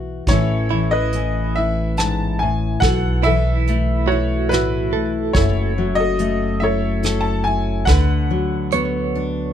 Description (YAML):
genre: acoustic folk-pop ballad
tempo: 71 BPM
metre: 3/4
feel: straight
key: unclear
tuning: A4 = 439 Hz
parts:
  - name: fingerpicked steel-string acoustic guitar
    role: accompaniment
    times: 0.0-9.5 s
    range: F#2 to A4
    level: -22 LUFS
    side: left 4 dB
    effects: none
  - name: direct-recorded clean electric guitar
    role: arpeggios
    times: 0.0-9.5 s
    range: E4 to C#5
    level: -26 LUFS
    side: right 11 dB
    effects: tremolo, slapback echo
  - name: upright bass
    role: bass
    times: 0.0-9.5 s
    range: F#1 to D2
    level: -21 LUFS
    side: right 1 dB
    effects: none
  - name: bright upright piano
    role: melody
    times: 0.3-9.5 s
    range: E4 to A5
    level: -22 LUFS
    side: equal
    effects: none
  - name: vintage brush drum kit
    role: drums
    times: 0.3-8.9 s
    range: hi-hat, kick drum, rim click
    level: -20 LUFS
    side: right 1 dB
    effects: none
room: light reverb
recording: none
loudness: -16 LUFS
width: side -9 dB against mid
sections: 0.3-9.5 A section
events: none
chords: 0.3 Aadd9; 2.8 B7sus4; 5.3 F#m7; 7.9 D6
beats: | 0.28 1.13 1.98 | 2.82 3.67 4.50 | 5.34 6.19 7.03 | 7.88 8.72